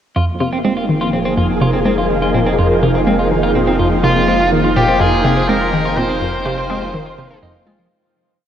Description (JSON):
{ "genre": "ambient, sequencer-driven space music", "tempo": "124 BPM", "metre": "4/4", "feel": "straight", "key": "F minor", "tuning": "A4 = 440 Hz", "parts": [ { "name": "phased string machine", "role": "sustained chords", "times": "0.2-7.9 s", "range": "F3 to G5", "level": "-17 LUFS", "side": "equal", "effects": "ensemble chorus, phaser, shimmer reverb" }, { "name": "twelve-string electric guitar", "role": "arpeggios", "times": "0.2-7.9 s", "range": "F3 to F5", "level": "-21 LUFS", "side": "right 1 dB", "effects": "auto-pan, shimmer reverb, analog delay" }, { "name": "analog pluck", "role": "riff", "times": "0.2-7.9 s", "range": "F2 to Ab3", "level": "-18 LUFS", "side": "equal", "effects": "chorus, analog delay" }, { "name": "round analog bass", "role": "bass", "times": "0.2-7.9 s", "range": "F1", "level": "-25 LUFS", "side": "equal", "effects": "none" }, { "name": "bubbling stepped-filter texture", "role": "texture", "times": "1.2-7.9 s", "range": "F5", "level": "-28 LUFS", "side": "right 4 dB", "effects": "chorus, built-in reverb, shimmer reverb" }, { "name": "smooth overdriven lead guitar", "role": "melody", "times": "4.0-7.4 s", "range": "F4 to C5", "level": "-18 LUFS", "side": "left 1 dB", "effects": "shimmer reverb, analog delay" } ], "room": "wet huge ambient reverb, RT60 7.6 s", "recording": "worn, warbling old tape, cassette tape, warbly pitch drift", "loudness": "-13 LUFS", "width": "side -9 dB against mid", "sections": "0.2-7.9 A section", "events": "fade-in on synth texture 0.2-7.9; filter sweep on synth arpeggio sound 0.2-7.9; fade-out 5.3-7.9", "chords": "0.2 Fm7", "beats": "| 0.17 0.65 1.13 1.62 | 2.10 2.58 3.07 3.55 | 4.04 4.52 5.00 5.49 | 5.97 6.46 6.94 7.42" }